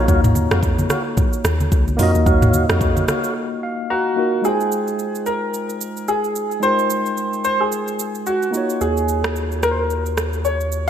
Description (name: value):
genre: amapiano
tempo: 110 BPM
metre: 4/4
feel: swing 58% on 16ths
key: F phrygian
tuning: A4 = 443 Hz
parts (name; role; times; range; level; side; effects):
- tine electric piano; accompaniment; 0.0-10.9 s; Ab3 to Bb5; -23 LUFS; left 1 dB; medium stereo tremolo
- tonewheel organ; stabs; 0.0-3.3 s; Gb4 to F5; -25 LUFS; right 1 dB; overdrive, slow rotary speaker, ping-pong delay
- deep log drum bass; bass; 0.0-3.0 s; Db2 to F2; -19 LUFS; equal; none
- afro-pop drum kit; drums; 0.1-10.9 s; hi-hat, kick drum, rim click, shaker, toms; -21 LUFS; equal; gated reverb
- congas; percussion; 0.1-3.2 s; none; -27 LUFS; right 2 dB; none
- warm baby grand piano; melody; 3.9-10.9 s; Gb4 to Db5; -20 LUFS; equal; analog chorus, ping-pong delay
- saturated sub bass; bass; 8.8-10.9 s; Eb2; -23 LUFS; equal; none
room: moderate lush hall reverb, RT60 2.0 s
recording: bright 1980s-style digital production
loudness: -17 LUFS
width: side -9 dB against mid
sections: 0.0-4.4 A section; 4.4-10.9 B section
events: drop 0.0-4.4; break 3.4-4.4; tine electric piano fill 3.4-4.4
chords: 0.0 Ebm9; 4.4 Fm9; 8.5 Ebm9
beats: | 0.08 0.63 1.17 1.72 | 2.26 2.81 3.35 3.90 | 4.45 4.99 5.54 6.08 | 6.63 7.17 7.72 8.26 | 8.81 9.36 9.90 10.45